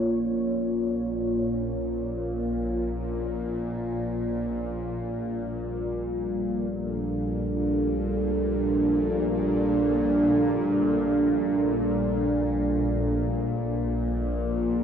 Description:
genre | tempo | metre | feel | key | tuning
dark ambient drone | free time | none | none | unclear | A4 = 441 Hz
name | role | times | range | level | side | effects
dark analog pad | sustained chords | 0.0-14.8 s | G3 to Db5 | -26 LUFS | right 1 dB | chorus
bowed-like drone | drone | 0.0-14.8 s | Bb1 to Bb2 | -29 LUFS | left 1 dB | built-in reverb, phaser
room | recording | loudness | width
wet cathedral reverb, RT60 5.9 s | worn, warbling old tape, cassette tape, warbly pitch drift | -24 LUFS | side -8 dB against mid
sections
0.0-14.8 A section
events
filter sweep on synth drone 0.0-14.8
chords
0.0 Bbm; 5.0 Gm; 13.1 Bb5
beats
free time

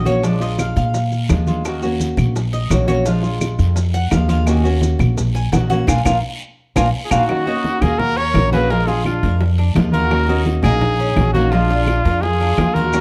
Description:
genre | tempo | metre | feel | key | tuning
latin, Cuban son and guajira | 170 BPM | 4/4 | straight | Eb minor | A4 = 440 Hz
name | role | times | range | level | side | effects
nylon-string guitar | accompaniment | 0.0-13.0 s | Eb3 to Gb4 | -24 LUFS | equal | none
Cuban tres | arpeggios | 0.0-13.0 s | Bb3 to Bb5 | -27 LUFS | equal | none
upright bass | bass | 0.0-13.0 s | Bb1 to Bb2 | -20 LUFS | equal | none
bongos | percussion | 0.1-13.0 s | none | -30 LUFS | equal | none
congas | percussion | 0.1-13.0 s | none | -25 LUFS | equal | none
guiro | percussion | 0.1-13.0 s | none | -38 LUFS | equal | none
maracas | percussion | 0.1-7.2, 12.9-13.0 s | none | -38 LUFS | equal | none
claves | percussion | 0.6-13.0 s | none | -33 LUFS | equal | none
clear trumpet | melody | 7.0-13.0 s | F4 to Db5 | -22 LUFS | equal | none
dark studio violin section | second line | 7.0-13.0 s | D4 to Bb4 | -30 LUFS | equal | none
room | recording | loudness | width
light reverb | dark, warm production | -17 LUFS | mono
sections
0.0-7.3 A section; 7.3-13.0 B section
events
Cuban tres solo 0.0-7.3; band accent 5.9-7.3; drum fill 6.2-7.3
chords
0.2 Bb7; 1.6 Ebm7; 3.1 Bb7; 4.5 Ebm7; 5.9 Bb7; 7.3 Ebm7; 8.7 Bb7; 10.1 Ebm7; 11.5 Bb7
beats
| 0.24 0.59 0.94 1.30 | 1.65 2.00 2.35 2.71 | 3.06 3.41 3.76 4.12 | 4.47 4.82 5.17 5.53 | 5.88 6.23 6.59 6.94 | 7.29 7.64 8.00 8.35 | 8.70 9.05 9.41 9.76 | 10.11 10.47 10.82 11.17 | 11.52 11.88 12.23 12.58 | 12.94

